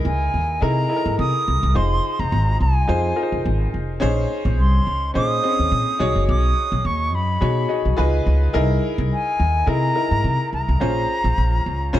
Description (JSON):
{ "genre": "polished 1980s jazz-funk pop", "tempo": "106 BPM", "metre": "4/4", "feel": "swing 54% on 16ths", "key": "Bb minor", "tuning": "A4 = 440 Hz", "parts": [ { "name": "bright concert grand piano", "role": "accompaniment", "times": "0.0-12.0 s", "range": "C4 to D#5", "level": "-24 LUFS", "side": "left 1 dB", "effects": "wide subtle chorus" }, { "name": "upright bass", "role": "bass", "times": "0.0-12.0 s", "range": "F1 to C3", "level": "-20 LUFS", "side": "equal", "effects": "none" }, { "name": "silver concert flute", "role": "melody", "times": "0.1-12.0 s", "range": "Ab5 to D#6", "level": "-23 LUFS", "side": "equal", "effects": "none" } ], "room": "light reverb, studio reverb", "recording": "dark, warm production", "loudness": "-17 LUFS", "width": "side -13 dB against mid", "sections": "0.0-12.0 A section", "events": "none", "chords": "0.0 C7alt; 1.7 Fm7; 4.0 Bbm11; 6.0 B6; 8.0 Db9; 8.5 C7alt; 10.8 Bbm9" }